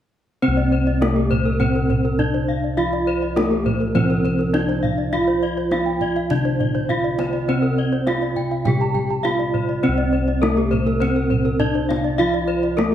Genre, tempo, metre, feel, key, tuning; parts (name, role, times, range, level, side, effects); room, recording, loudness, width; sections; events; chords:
Balinese gamelan; 102 BPM; 4/4; straight; C slendro; A4 = 439 Hz
gamelan-type bronze metallophone; melody; 0.4-12.9 s; Bb3-45c to G4+25c; -21 LUFS; equal
gamelan-type bronze metallophone; accompaniment; 0.4-12.9 s; C3 to G3+25c; -27 LUFS; left 1 dB
gamelan-type bronze metallophone; arpeggios; 0.4-12.9 s; Bb4-45c to G5+25c; -27 LUFS; left 4 dB
gamelan-type bossed gongs; bass; 0.4-12.9 s; C2 to F4-35c; -24 LUFS; left 1 dB
gamelan-type bronze metallophone; arpeggios; 0.6-12.9 s; G4+25c to Bb5-45c; -27 LUFS; right 4 dB
kendang; percussion; 0.6-12.9 s; -27 LUFS; right 3 dB
moderate recital hall reverb, RT60 1.6 s; dark, warm production; -17 LUFS; side -10 dB against mid
0.4-9.8 A section; 9.8-12.9 A section